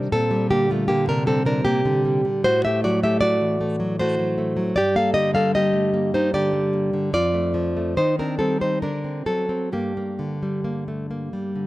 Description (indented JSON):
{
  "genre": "romantic piece for solo classical guitar",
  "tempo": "64-79 BPM",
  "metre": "3/4",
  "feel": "rubato",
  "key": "G minor",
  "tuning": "A4 = 439 Hz",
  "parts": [
    { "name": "nylon-string guitar", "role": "solo", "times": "0.0-11.7 s", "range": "F2 to F5", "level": "-19 LUFS", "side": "equal", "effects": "none" }
  ],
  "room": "light reverb",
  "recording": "close, detailed microphones",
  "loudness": "-19 LUFS",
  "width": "side -17 dB against mid",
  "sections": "0.0-11.7 A section",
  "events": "none",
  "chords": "0.1 Gm/Bb; 2.4 F#dim/A; 4.8 Gm; 7.1 Dm/F; 8.0 Cm/Eb; 8.8 D7; 9.7 Gm"
}